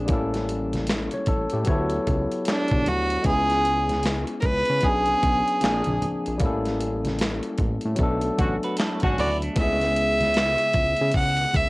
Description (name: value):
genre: R&B, neo-soul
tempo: 76 BPM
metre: 4/4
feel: swing 63% on 16ths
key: unclear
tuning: A4 = 440 Hz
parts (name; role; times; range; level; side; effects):
- barky tine electric piano; accompaniment; 0.0-11.7 s; C#3 to C#5; -27 LUFS; left 2 dB; overdrive, cassette tape
- fat analog bass; bass; 0.0-11.7 s; G#1 to C#3; -28 LUFS; equal; none
- dusty soul sampler-style drum kit; drums; 0.1-11.7 s; handclaps, hi-hat, kick drum, snare drum; -26 LUFS; equal; cassette tape
- congas; percussion; 0.1-11.7 s; none; -34 LUFS; right 1 dB; none
- clear fiddle; melody; 2.5-11.7 s; D4 to F#5; -23 LUFS; right 1 dB; none
- warm horn section; stabs; 8.4-9.3 s; D3 to F#4; -30 LUFS; equal; cassette tape, analog delay
- clean electric guitar; second line; 8.6-9.8 s; A3 to B4; -31 LUFS; right 2 dB; cassette tape
room: light reverb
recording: home recording on cassette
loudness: -21 LUFS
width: side -23 dB against mid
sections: 0.0-9.6 A section; 9.6-11.7 B section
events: band accent 6.4-9.6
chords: 0.1 A7b9; 1.7 Dmaj13; 3.2 C#m7; 4.8 Bm69; 5.6 A#9; 6.4 A7b9; 8.0 Bm9; 9.6 C#m7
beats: | 0.09 0.88 1.67 2.46 | 3.25 4.04 4.83 5.62 | 6.41 7.20 7.99 8.78 | 9.56 10.35 11.14